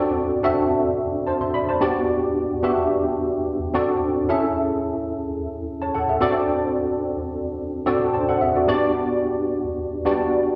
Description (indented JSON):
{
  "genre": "pop",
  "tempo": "109 BPM",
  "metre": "4/4",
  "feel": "swing 54% on 16ths",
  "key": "G major",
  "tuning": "A4 = 440 Hz",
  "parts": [
    { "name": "tine electric piano", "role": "solo", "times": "0.0-10.6 s", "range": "B3 to C6", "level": "-22 LUFS", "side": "equal", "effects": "overdrive, ensemble chorus" }
  ],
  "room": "wet recital hall reverb, RT60 1.5 s",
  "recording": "none",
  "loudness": "-22 LUFS",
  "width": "mono",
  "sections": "0.0-4.3 A section; 4.3-10.6 B section",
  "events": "none",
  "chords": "0.0 D7; 1.8 Gmaj7; 3.7 D7; 4.3 Amaj7; 6.2 D7; 8.7 Gmaj7"
}